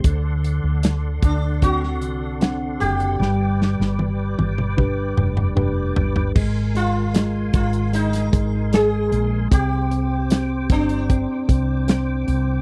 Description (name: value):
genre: pop ballad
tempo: 76 BPM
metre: 4/4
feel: straight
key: unclear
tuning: A4 = 439 Hz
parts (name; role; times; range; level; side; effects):
- tine electric piano; accompaniment; 0.0-12.6 s; D3 to F#5; -27 LUFS; equal; none
- tonewheel organ; sustained chords; 0.0-12.6 s; A4 to D6; -37 LUFS; equal; chorus vibrato, slow rotary speaker
- woody fretless electric bass; bass; 0.0-12.6 s; F1 to D2; -25 LUFS; equal; subtle chorus
- modern studio drum kit; drums; 0.0-12.5 s; crash cymbal, hi-hat, kick drum, snare drum, toms; -22 LUFS; equal; none
- sitar; melody; 1.2-12.2 s; D4 to Ab4; -28 LUFS; equal; none
room: little or no reverb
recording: dry, close 1970s-style studio recording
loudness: -20 LUFS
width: mono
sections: 0.0-6.4 A section; 6.4-12.6 B section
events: drum fill 3.2-6.4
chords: 0.0 D7; 3.2 G; 6.4 Abadd9; 9.5 Csus2